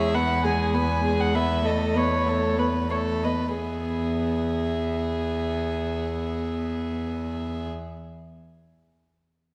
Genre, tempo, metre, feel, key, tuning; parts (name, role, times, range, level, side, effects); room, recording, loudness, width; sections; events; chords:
quick classical-period movement for string quartet; 60-67 BPM (dotted quarters); 6/8; straight; E major; A4 = 439 Hz
dark violin; melody; 0.0-7.7 s; B4 to G#5; -33 LUFS; equal
warm violin; second line; 0.0-7.7 s; G#4 to B4; -32 LUFS; equal
warm viola; accompaniment; 0.0-7.7 s; G#3 to B3; -31 LUFS; equal
warm cello; bass; 0.0-7.7 s; E2; -31 LUFS; equal
wet concert hall reverb, RT60 1.7 s; -26 LUFS; mono
0.0-3.6 A section; 3.6-7.5 B section
slowing down 0.0-3.6
0.0 E; 1.7 Aadd9/E; 3.6 E